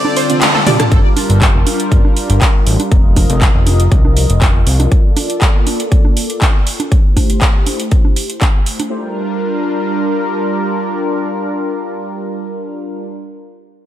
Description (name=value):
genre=progressive house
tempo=120 BPM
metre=4/4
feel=straight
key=G minor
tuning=A4 = 440 Hz
part: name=warm analog pad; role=sustained chords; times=0.0-13.1 s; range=D3 to Eb5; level=-19 LUFS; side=left 1 dB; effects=chorus, sidechain pumping
part: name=deep mellow chord stab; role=stabs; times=0.0-0.8 s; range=C4 to D5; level=-21 LUFS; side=right 6 dB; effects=none
part: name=electronic congas and toms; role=percussion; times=0.0-8.9 s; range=none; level=-24 LUFS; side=right 4 dB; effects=sidechain pumping on perc, sidechain pumping on toms
part: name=tight sequenced synth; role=arpeggios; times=0.2-0.8 s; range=A4 to A5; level=-21 LUFS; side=equal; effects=chorus, vintage 12-bit sampler grit, sidechain pumping, diffuse ambient delay
part: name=pop drum kit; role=drums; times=0.2-8.9 s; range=handclaps, hi-hat, ride cymbal, rim click, toms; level=-18 LUFS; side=equal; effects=sidechain pumping on hats, sidechain pumping on cymbals, sidechain pumping on toms
part: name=fat analog bass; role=bass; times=0.9-4.9 s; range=F1 to C2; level=-13 LUFS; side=equal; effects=sidechain pumping
part: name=electronic kick drum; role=drums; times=0.9-8.5 s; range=none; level=-11 LUFS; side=equal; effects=none
room=light reverb, digital ambience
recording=none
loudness=-11 LUFS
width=side -12 dB against mid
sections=0.9-8.9 A section; 8.9-12.9 B section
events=break 0.0-0.9; drum fill 0.4-0.9; band accent 0.4; filter sweep on analog synth pad 0.9-8.9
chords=0.0 Dm7; 0.9 Gm7; 2.9 F7sus4; 4.9 Bbmaj7; 6.9 Am7; 8.9 Gm7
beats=0.41 | 0.92 1.42 1.92 2.42 | 2.92 3.42 3.92 4.42 | 4.92 5.42 5.92 6.42 | 6.92 7.42 7.92 8.41 | 8.91 9.41 9.91 10.41 | 10.91 11.41 11.91 12.41